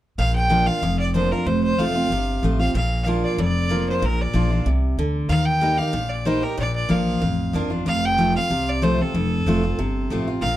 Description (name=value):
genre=bluegrass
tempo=188 BPM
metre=4/4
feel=straight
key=Bb major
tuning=A4 = 440 Hz
part: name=bright fiddle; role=melody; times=0.2-10.6 s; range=A4 to G5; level=-24 LUFS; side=equal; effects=none
part: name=picked steel-string acoustic guitar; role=accompaniment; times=0.2-10.6 s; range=F2 to G4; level=-22 LUFS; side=left 1 dB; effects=none
part: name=upright bass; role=bass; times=0.2-10.6 s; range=F1 to Eb2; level=-24 LUFS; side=equal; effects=none
room=moderate studio reverb, RT60 0.5 s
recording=dark, warm production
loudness=-19 LUFS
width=side -13 dB against mid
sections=0.2-10.6 A section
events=none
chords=0.2 Bb; 1.5 F; 2.7 Bb; 5.3 Eb; 6.6 Bb; 7.9 F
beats=| 0.19 0.51 0.83 1.15 | 1.47 1.78 2.10 2.42 | 2.74 3.06 3.38 3.70 | 4.02 4.34 4.66 4.98 | 5.30 5.62 5.94 6.26 | 6.58 6.90 7.22 7.54 | 7.86 8.19 8.51 8.83 | 9.15 9.47 9.79 10.11 | 10.43